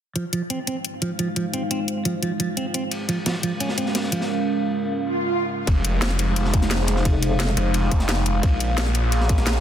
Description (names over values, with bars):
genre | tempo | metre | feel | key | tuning
dark technical drum and bass | 174 BPM | 4/4 | straight | F minor | A4 = 440 Hz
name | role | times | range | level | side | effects
dark analog pad | sustained chords | 1.0-9.6 s | Ab3 to F5 | -26 LUFS | right 1 dB | chorus, sidechain pumping
clean electric guitar | arpeggios | 0.2-4.2 s | F3 to Db4 | -26 LUFS | right 2 dB | vintage 12-bit sampler grit, sidechain pumping, low-pass filter, dub echo
drum and bass drum kit | drums | 0.2-9.5 s | hi-hat, snare drum | -27 LUFS | left 1 dB | overdrive
crunchy breakbeat drum kit | drums | 2.9-9.6 s | ride cymbal, snare drum | -32 LUFS | equal | high-pass filter on cymbals, high-pass filter on snare, high-pass filter on room
swell | sound effects | 5.1-5.7 s | none | -24 LUFS | right 3 dB | none
snarling distorted saw bass | bass | 5.7-9.6 s | F1 to Bb1 | -22 LUFS | equal | distortion, overdrive, sidechain pumping
electronic kick drum | drums | 5.7-9.4 s | none | -19 LUFS | equal | overdrive
metallic wobble bass | bass | 7.1-7.6 s | F1 | -22 LUFS | equal | chorus
room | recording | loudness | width
light reverb | dense, heavily limited modern master | -20 LUFS | side -10 dB against mid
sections
0.2-5.7 A section; 5.7-9.6 B section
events
swell 5.1-5.7; drop 5.7-9.6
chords
0.2 Fm7; 2.9 Bbm7; 5.7 Fm7; 8.4 Bbm7